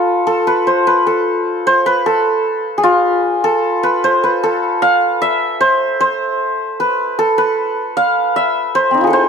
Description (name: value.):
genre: indian classical.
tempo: 152 BPM.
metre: 4/4.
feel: straight.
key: unclear.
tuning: A4 = 441 Hz.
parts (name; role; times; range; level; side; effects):
santur; solo; 0.0-9.3 s; C4 to F5; -12 LUFS; equal; none.
room: moderate spring reverb, RT60 2.6 s.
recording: none.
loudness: -13 LUFS.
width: side -6 dB against mid.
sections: 0.0-6.0 A section; 6.0-9.3 B section.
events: none.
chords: none.